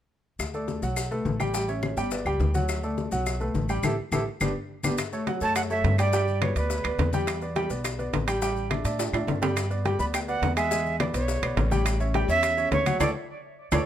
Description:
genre	latin, salsa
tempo	209 BPM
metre	4/4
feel	straight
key	D major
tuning	A4 = 440 Hz
part	upright bass	bass	0.4-13.8 s	G1 to A2	-28 LUFS	equal	none
part	bongos	percussion	0.4-13.8 s	none	-36 LUFS	left 8 dB	none
part	claves	percussion	0.4-13.8 s	none	-35 LUFS	left 1 dB	none
part	congas	percussion	0.4-13.8 s	none	-33 LUFS	left 4 dB	none
part	maracas	percussion	0.4-13.8 s	none	-39 LUFS	left 7 dB	none
part	clear baby grand piano	accompaniment	0.5-13.8 s	F#3 to G#5	-29 LUFS	right 1 dB	none
part	timbales	percussion	5.0-13.8 s	none	-32 LUFS	right 8 dB	none
part	breathy bright jazz flute	melody	5.4-7.1, 10.0-13.8 s	B4 to B5	-28 LUFS	right 3 dB	tape echo
room	light reverb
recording	close, detailed microphones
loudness	-24 LUFS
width	side -10 dB against mid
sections	0.4-5.0 A section; 5.0-13.9 B section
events	band accent 3.8-5.0, 13.0-13.9; drum fill 4.1-5.0, 9.0-9.6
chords	0.4 D; 1.0 B5; 1.5 A7; 2.1 G; 2.7 D; 3.3 B5; 3.8 A5; 4.4 G; 5.0 F#m7; 6.1 G; 7.3 Em7; 8.4 A7sus4; 9.6 Gmaj7; 10.7 E7; 11.9 A7; 13.0 D5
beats	| 0.40 0.68 0.97 1.26 | 1.54 1.83 2.12 2.40 | 2.69 2.98 3.26 3.55 | 3.84 4.12 4.41 4.70 | 4.98 5.27 5.56 5.84 | 6.13 6.42 6.70 6.99 | 7.28 7.56 7.85 8.13 | 8.42 8.71 8.99 9.28 | 9.57 9.85 10.14 10.43 | 10.71 11.00 11.29 11.57 | 11.86 12.14 12.43 12.72 | 13.00 13.29 13.58

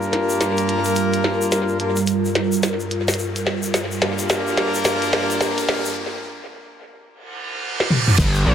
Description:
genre	glitch hop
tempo	108 BPM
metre	4/4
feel	swing 62% on 16ths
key	G minor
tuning	A4 = 437 Hz
part	warm analog pad	sustained chords	0.0-5.9 s	G2 to Bb4	-23 LUFS	right 2 dB	chorus, sidechain pumping
part	warm horn section	stabs	0.0-8.5 s	Bb3 to Bb4	-23 LUFS	left 1 dB	sidechain pumping, dub echo
part	tube shaker	percussion	0.0-8.4 s	none	-32 LUFS	left 3 dB	dub echo
part	riser, reverse cymbal and downlifter	sound effects	0.0-8.5 s	none	-28 LUFS	right 2 dB	none
part	glitchy drum kit	drums	0.1-8.3 s	crash cymbal, hi-hat, snare drum, toms	-22 LUFS	equal	dub echo
part	gritty driven synth bass	bass	8.2-8.5 s	G1 to Bb1	-17 LUFS	equal	overdrive
part	electronic kick drum	drums	8.2-8.3 s	none	-19 LUFS	equal	none
room	moderate plate reverb, RT60 1.2 s, digital ambience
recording	echo-heavy mix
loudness	-18 LUFS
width	side -9 dB against mid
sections	0.0-8.2 A section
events	build-up 0.0-8.2; drum fill 0.0-6.0, 7.8-8.2; riser 0.0-6.0; break 6.0-8.2; reverse cymbal 7.3-8.2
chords	0.0 Gm7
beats	0.41 0.96 | 1.52 2.08 2.63 3.19 | 3.74 4.30 4.85 5.41 | 5.96 6.52 7.08 7.63 | 8.19

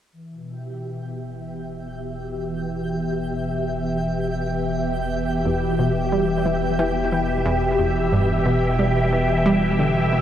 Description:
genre	ambient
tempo	90 BPM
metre	4/4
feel	straight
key	E minor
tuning	A4 = 440 Hz
part	phased string machine	sustained chords	0.1-10.2 s	B2 to E5	-22 LUFS	equal	ensemble chorus, phaser, shimmer reverb
part	warm sub bass	bass	0.1-10.2 s	E1	-31 LUFS	equal	tube saturation
part	twinkling granular texture	texture	0.8-10.2 s	G5	-35 LUFS	right 2 dB	built-in reverb, shimmer reverb
part	analog pluck	riff	5.5-10.2 s	E2 to G3	-23 LUFS	equal	chorus, tape echo
room	wet huge ambient reverb, RT60 7.0 s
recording	none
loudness	-19 LUFS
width	side -10 dB against mid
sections	0.1-10.2 A section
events	fade-in on sub bass 0.1-10.2; fade-in on synth texture 0.1-10.2; filter sweep on string machine 0.1-10.2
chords	0.1 Em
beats	| 0.12 0.79 1.46 2.12 | 2.79 3.46 4.12 4.79 | 5.46 6.12 6.79 7.46 | 8.12 8.79 9.46 10.12

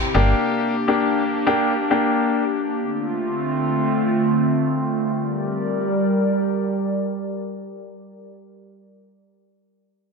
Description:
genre	pop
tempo	102 BPM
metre	4/4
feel	straight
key	G minor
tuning	A4 = 440 Hz
part	clear baby grand piano	accompaniment	0.0-2.4 s	Bb3 to G4	-20 LUFS	left 3 dB	low-pass filter
part	airy breathy pad	sustained chords	0.0-8.3 s	C3 to E5	-21 LUFS	right 1 dB	chorus, low-pass filter
room	moderate plate reverb, RT60 2.4 s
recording	dense, heavily limited modern master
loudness	-19 LUFS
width	side -4 dB against mid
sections	0.0-5.1 A section; 5.1-7.5 B section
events	filter sweep 0.0-5.1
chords	0.1 Gm; 2.8 Dm7; 5.1 Gm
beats	| 0.44 1.03 1.61 2.20 | 2.79 3.38 3.97 4.55 | 5.14 5.73 6.32 6.91

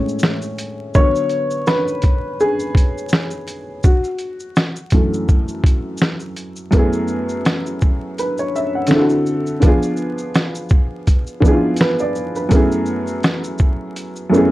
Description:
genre	lo-fi hip hop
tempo	83 BPM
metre	4/4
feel	swing 55% on 16ths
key	F# minor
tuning	A4 = 440 Hz
part	dark upright piano	accompaniment	0.0-14.5 s	F#2 to F#5	-18 LUFS	equal	low-pass filter
part	trip hop sampler-style drum kit	drums	0.1-14.5 s	hi-hat, kick drum, shaker, snare drum	-15 LUFS	equal	none
room	moderate small room reverb, RT60 0.5 s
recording	vinyl crackle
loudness	-15 LUFS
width	side -17 dB against mid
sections	0.0-6.7 A section; 6.7-14.5 B section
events	upright piano solo 0.0-6.7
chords	0.0 Amaj7; 0.9 D6; 3.8 F#m7; 6.7 F#m11; 8.9 D9; 9.6 Fdim7; 12.5 F#m11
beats	0.23 | 0.95 1.67 2.40 3.12 | 3.84 4.57 5.29 6.01 | 6.73 7.46 8.18 8.90 | 9.62 10.35 11.07 11.79 | 12.52 13.24 13.96

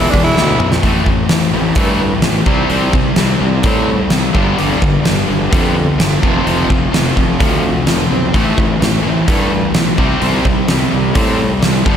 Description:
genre	classic rock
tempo	128 BPM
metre	4/4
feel	straight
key	A minor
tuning	A4 = 436 Hz
part	growling tenor saxophone	melody	0.0-0.7 s	D4 to E4	-18 LUFS	equal	slapback echo, analog delay
part	overdriven semi-hollow guitar	riff	0.0-12.0 s	E2 to C4	-21 LUFS	right 8 dB	spring reverb, slapback echo
part	thick fuzz guitar	riff	0.0-12.0 s	G2 to F4	-20 LUFS	equal	distortion, slapback echo
part	tight distorted guitar	riff	0.0-12.0 s	E2 to C4	-19 LUFS	left 7 dB	distortion
part	fuzz fingered electric bass	bass	0.0-12.0 s	E1 to A2	-18 LUFS	equal	overdrive
part	huge arena drum kit	drums	0.1-12.0 s	hi-hat, kick drum, snare drum, toms	-15 LUFS	equal	none
room	moderate concert hall reverb, RT60 2.2 s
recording	big arena sound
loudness	-11 LUFS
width	side -8 dB against mid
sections	0.8-12.0 A section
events	drum fill 0.4-0.8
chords	0.0 E; 0.8 Am; 2.5 C; 4.4 G; 6.2 F6; 8.3 Am; 10.0 C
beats	0.38 | 0.85 1.31 1.78 2.25 | 2.72 3.19 3.66 4.12 | 4.59 5.06 5.53 6.00 | 6.47 6.94 7.41 7.88 | 8.35 8.82 9.29 9.76 | 10.23 10.70 11.17 11.64

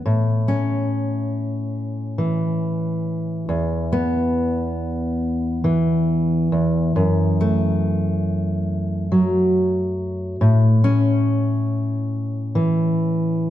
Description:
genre	folk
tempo	70 BPM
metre	4/4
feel	straight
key	A major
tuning	A4 = 440 Hz
part	fingerpicked steel-string acoustic guitar	solo	0.0-13.5 s	E2 to C#4	-18 LUFS	equal	none
room	moderate scoring stage reverb, RT60 1.6 s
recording	close, detailed microphones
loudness	-18 LUFS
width	side -12 dB against mid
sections	0.1-13.5 A section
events	none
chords	0.1 A; 3.5 E5; 7.0 F#m7; 10.4 A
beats	| 0.06 0.92 1.78 2.64 | 3.50 4.37 5.23 6.09 | 6.95 7.81 8.68 9.54 | 10.40 11.26 12.12 12.98

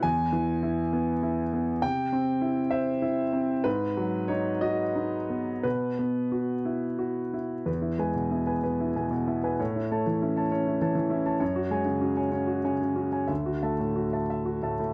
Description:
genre	neoclassical minimalist piano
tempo	57-68 BPM (dotted quarters)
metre	6/8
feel	rubato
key	E mixolydian from 7.7 s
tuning	A4 = 440 Hz
part	clear concert grand piano	solo	0.0-14.9 s	D2 to A5	-28 LUFS	equal	none
room	light reverb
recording	dry, close 1970s-style studio recording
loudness	-28 LUFS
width	mono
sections	0.0-7.7 A section; 7.7-14.9 B section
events	none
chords	0.0 E; 1.8 C; 3.7 G#m7; 5.6 Bsus4; 7.7 E; 9.6 A; 11.4 F#sus2; 13.3 Dadd9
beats	| 0.04 0.93 | 1.83 2.73 | 3.66 4.63 | 5.64 6.66 | 7.68 8.64 | 9.60 10.52 | 11.41 12.32 | 13.29 14.29

